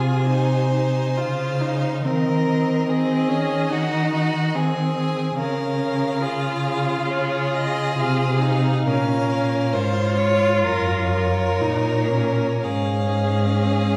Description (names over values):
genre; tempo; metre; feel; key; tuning
classical, slow romantic movement for string quartet; 57-74 BPM; 4/4; rubato; Db major; A4 = 440 Hz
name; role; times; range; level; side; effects
rich violin; melody; 0.0-14.0 s; Db5 to Ab5; -32 LUFS; equal; none
clear violin; second line; 0.0-14.0 s; Gb4 to Db5; -28 LUFS; equal; none
rich viola; accompaniment; 0.0-14.0 s; C4 to F4; -27 LUFS; equal; none
rich cello; bass; 0.0-14.0 s; Gb2 to Eb3; -25 LUFS; equal; none
room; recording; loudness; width
wet scoring stage reverb, RT60 1.6 s; heard from further back in the room; -21 LUFS; mono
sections
0.0-14.0 A section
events
none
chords
0.0 Ab/C; 2.0 Ab7/Eb; 5.4 Db; 8.9 Bbm; 10.6 Gbmaj7; 12.6 Db/Ab